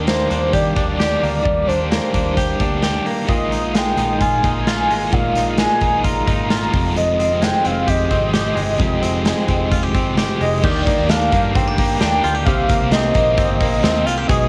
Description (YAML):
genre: jangly indie pop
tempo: 131 BPM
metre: 4/4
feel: straight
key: Eb major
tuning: A4 = 440 Hz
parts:
  - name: warm velvety synth lead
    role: melody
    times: 0.0-14.5 s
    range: C5 to Bb5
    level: -23 LUFS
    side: equal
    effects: chorus
  - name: crunchy overdriven guitar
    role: accompaniment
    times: 0.0-14.5 s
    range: F2 to G4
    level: -27 LUFS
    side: equal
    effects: tremolo, cassette tape
  - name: direct-recorded clean electric guitar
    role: arpeggios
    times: 0.0-14.5 s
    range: F2 to Ab4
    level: -24 LUFS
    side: equal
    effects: cassette tape
  - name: vintage muted fingered electric bass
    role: bass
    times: 0.0-14.5 s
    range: F1 to Eb3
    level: -27 LUFS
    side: equal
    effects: none
  - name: big rock drum kit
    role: drums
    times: 0.1-14.4 s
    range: crash cymbal, hi-hat, kick drum, snare drum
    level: -23 LUFS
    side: equal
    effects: none
room: moderate booth ambience, RT60 0.3 s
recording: home recording on cassette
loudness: -17 LUFS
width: mono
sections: 0.0-10.6 A section; 10.6-14.5 B section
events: none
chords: 0.0 Ebmaj7; 3.3 Bb7sus4; 6.7 Fm9; 10.6 Ebmaj7; 12.5 Cm7